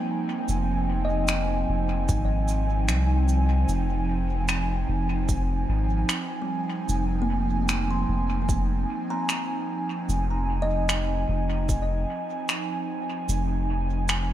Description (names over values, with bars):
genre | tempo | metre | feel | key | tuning
ambient dub | 75 BPM | 4/4 | swing 54% on 16ths | F minor | A4 = 440 Hz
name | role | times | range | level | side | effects
airy breathy pad | sustained chords | 0.0-14.3 s | F3 to Ab5 | -28 LUFS | right 2 dB | chorus
kalimba | arpeggios | 0.0-13.3 s | G3 to C6 | -33 LUFS | equal | low-pass filter, tape echo
soft dub sub bass | bass | 0.5-14.3 s | F1 to C2 | -25 LUFS | equal | none
cabasa and finger snaps | drums | 0.5-14.3 s | none | -30 LUFS | equal | dub echo
electronic kick drum | drums | 2.1-11.9 s | none | -28 LUFS | equal | overdrive
room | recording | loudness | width
light reverb, studio ambience | none | -23 LUFS | side -12 dB against mid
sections
0.0-14.3 A section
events
none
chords
0.0 Fm7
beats
| 0.49 1.29 2.09 2.89 | 3.69 4.49 5.29 6.09 | 6.89 7.69 8.49 9.29 | 10.09 10.89 11.69 12.49 | 13.29 14.09